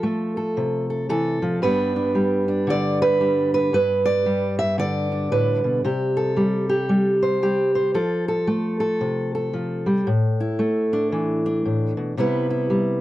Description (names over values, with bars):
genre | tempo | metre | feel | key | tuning
folk, solo fingerstyle acoustic guitar | 114 BPM | 4/4 | swing 62% on 8ths | G mixolydian | A4 = 440 Hz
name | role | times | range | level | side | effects
fingerpicked steel-string acoustic guitar | solo | 0.0-13.0 s | G2 to E5 | -19 LUFS | equal | none
room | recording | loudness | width
light reverb | dry, close 1970s-style studio recording | -19 LUFS | side -15 dB against mid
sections
0.0-10.1 A section; 10.1-13.0 B section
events
none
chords
0.0 F; 1.6 G; 5.8 C5; 8.0 F; 10.1 Asus4; 12.2 Cmaj7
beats
0.04 0.57 1.10 | 1.62 2.15 2.68 3.21 | 3.74 4.27 4.79 5.32 | 5.85 6.38 6.90 7.43 | 7.96 8.49 9.01 9.54 | 10.07 10.60 11.12 11.65 | 12.18 12.71